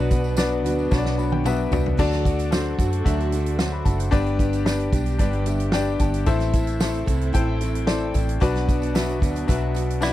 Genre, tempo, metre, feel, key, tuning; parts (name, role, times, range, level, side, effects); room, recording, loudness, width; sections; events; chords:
piano-driven pop; 112 BPM; 4/4; straight; A4 = 440 Hz
direct-recorded clean electric guitar; melody; 0.0-1.4, 10.0-10.1 s; E4 to B4; -29 LUFS; equal
clear upright piano; accompaniment; 0.0-10.1 s; G2 to B5; -26 LUFS; left 6 dB
warm studio string section; sustained chords; 0.0-10.1 s; D3 to A4; -35 LUFS; right 3 dB; stereo widening
picked steel-string acoustic guitar; riff; 0.0-10.1 s; G2 to A4; -30 LUFS; right 6 dB
vintage muted fingered electric bass; bass; 0.0-10.1 s; F#1 to F#2; -24 LUFS; equal
natural country drum kit; drums; 0.1-10.1 s; crash cymbal, hi-hat, kick drum, snare drum, toms; -23 LUFS; equal
tambourine; percussion; 0.1-10.1 s; -43 LUFS; right 11 dB
little or no reverb; dry, close 1970s-style studio recording; -20 LUFS; side -14 dB against mid
0.0-2.0 A section; 2.0-10.1 B section
drum fill 0.9-2.0; upright piano fill 0.9-2.0, 5.2-6.3, 9.8-10.1
0.0 Bm; 2.0 D; 4.1 G; 6.3 Am; 8.4 Bm